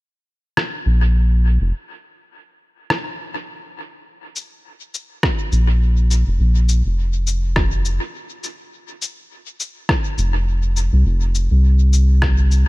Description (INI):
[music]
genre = ambient dub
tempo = 103 BPM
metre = 4/4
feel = swing 56% on 16ths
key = unclear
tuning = A4 = 440 Hz
[part]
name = electronic rim click and cabasa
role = drums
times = 0.6-12.6 s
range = none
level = -24 LUFS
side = left 1 dB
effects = dub echo
[part]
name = round analog bass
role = bass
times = 0.9-1.7, 5.5-12.6 s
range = F1 to C2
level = -14 LUFS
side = equal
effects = tube saturation
[part]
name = electronic kick drum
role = drums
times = 5.2-12.4 s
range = none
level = -21 LUFS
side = equal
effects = overdrive
[sound]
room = little or no reverb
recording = none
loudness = -15 LUFS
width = side -20 dB against mid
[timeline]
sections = 0.0-4.1 A section; 4.1-12.7 B section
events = break 1.7-4.1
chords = none